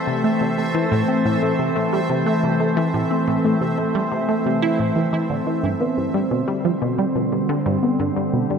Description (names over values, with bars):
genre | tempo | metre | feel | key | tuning
ambient, sequencer-driven space music | 89 BPM | 4/4 | straight | A minor | A4 = 440 Hz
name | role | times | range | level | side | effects
evolving wavetable pad | sustained chords | 0.0-8.6 s | D3 to C5 | -21 LUFS | equal | chorus, built-in reverb
bubbling stepped-filter texture | texture | 0.0-5.7 s | E5 | -32 LUFS | right 2 dB | chorus, built-in reverb
tight sequenced synth | riff | 0.1-8.6 s | G2 to E4 | -22 LUFS | equal | chorus, tape echo
room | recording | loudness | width
wet lush hall reverb, RT60 2.8 s | dreamy mix soaked in reverb | -18 LUFS | side -6 dB against mid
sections
0.0-5.6 A section; 5.6-8.6 B section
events
none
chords
0.0 Am; 5.6 Gsus4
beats
| 0.24 0.92 1.59 2.27 | 2.94 3.61 4.29 4.96 | 5.64 6.31 6.98 7.66 | 8.33